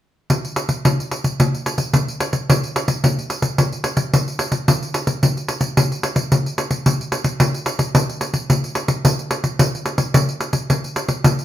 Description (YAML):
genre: samba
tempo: 110 BPM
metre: 4/4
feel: straight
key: none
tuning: none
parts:
  - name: pandeiro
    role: percussion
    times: 0.3-11.4 s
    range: none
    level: -17 LUFS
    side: equal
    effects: none
room: wet studio reverb, RT60 0.8 s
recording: minimal, uncompressed stereo recording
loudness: -17 LUFS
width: side -12 dB against mid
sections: 0.3-2.5 A section; 2.5-11.4 B section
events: none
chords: none